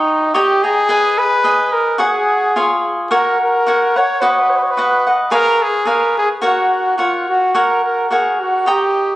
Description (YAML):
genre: mexican folk, mariachi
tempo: 108 BPM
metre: 2/4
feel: swing 54% on 8ths, rubato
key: F# major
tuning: A4 = 440 Hz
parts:
  - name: warm trumpet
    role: melody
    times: 0.0-9.2 s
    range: D#4 to C#5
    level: -16 LUFS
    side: equal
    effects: none
  - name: cavaquinho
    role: accompaniment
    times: 0.0-9.2 s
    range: E#4 to A#5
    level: -15 LUFS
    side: equal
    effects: none
room: light reverb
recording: recorded on a phone in the room, club ambience, compression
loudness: -12 LUFS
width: side -16 dB against mid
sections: 0.0-7.5 A section; 7.5-9.2 A section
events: none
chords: 0.0 D#7; 0.9 G#m; 2.0 C#sus4; 2.5 C#; 3.1 F#; 4.2 B; 5.3 C#7; 6.4 F#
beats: 0.33 | 0.88 1.43 | 1.99 2.55 | 3.11 3.66 | 4.22 4.77 | 5.32 5.87 | 6.42 6.98 | 7.54 8.10 | 8.66